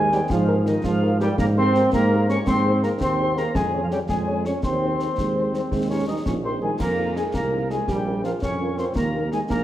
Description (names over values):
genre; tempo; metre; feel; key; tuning
military-style march for wind band; 111 BPM (dotted quarters); 6/8; straight; unclear; A4 = 441 Hz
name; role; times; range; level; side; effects
mellow cornet; melody; 0.0-9.6 s; Eb4 to Eb5; -34 LUFS; equal; none
mellow wooden piccolo; second line; 0.0-9.6 s; Eb5 to Eb6; -28 LUFS; left 2 dB; none
warm trombone section; sustained chords; 0.0-9.6 s; Eb3 to Eb4; -24 LUFS; right 2 dB; none
mellow tuba; bass; 0.0-9.6 s; Bb1 to Ab2; -25 LUFS; right 1 dB; none
mellow French horn section; accompaniment; 0.1-9.4 s; Db4 to Db5; -30 LUFS; left 3 dB; none
concert snare drum, concert bass drum and clash cymbals; drums; 0.1-9.6 s; none; -30 LUFS; left 1 dB; none
dark euphonium; second line; 5.2-6.8 s; Eb3 to Ab3; -30 LUFS; right 2 dB; none
room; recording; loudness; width
wet recital hall reverb, RT60 1.8 s; none; -20 LUFS; side -12 dB against mid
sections
0.0-9.6 A section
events
none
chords
0.3 Eb/Ab; 2.5 Ab; 3.6 Db/F; 4.6 Ab/Eb; 5.7 Eb; 6.8 Fm7; 7.9 Bbm; 9.0 Eb